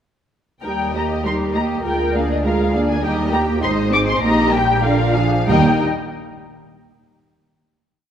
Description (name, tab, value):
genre	quick classical-period movement for string orchestra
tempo	91-103 BPM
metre	2/4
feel	rubato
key	Eb major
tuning	A4 = 440 Hz
part	muted symphonic violin section	melody	0.6-5.8 s	Eb5 to D6	-22 LUFS	left 4 dB	none
part	muted symphonic violin section	second line	0.6-5.8 s	G4 to G5	-25 LUFS	left 3 dB	none
part	muted symphonic viola section	accompaniment	0.6-5.8 s	D3 to G4	-20 LUFS	equal	none
part	muted symphonic double bass section	bass	0.6-5.8 s	Ab1 to Eb2	-23 LUFS	right 3 dB	none
part	muted symphonic cello section	bass	1.2-5.8 s	Eb2 to Bb4	-24 LUFS	right 3 dB	none
room	moderate concert hall reverb, RT60 1.8 s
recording	none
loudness	-15 LUFS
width	side -9 dB against mid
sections	0.6-5.5 theme; 5.5-6.7 final chord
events	none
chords	0.6 Eb; 1.9 Bb7/D; 3.0 Eb; 3.6 Ab; 4.2 Eb/Bb; 4.8 Bb7; 5.5 Eb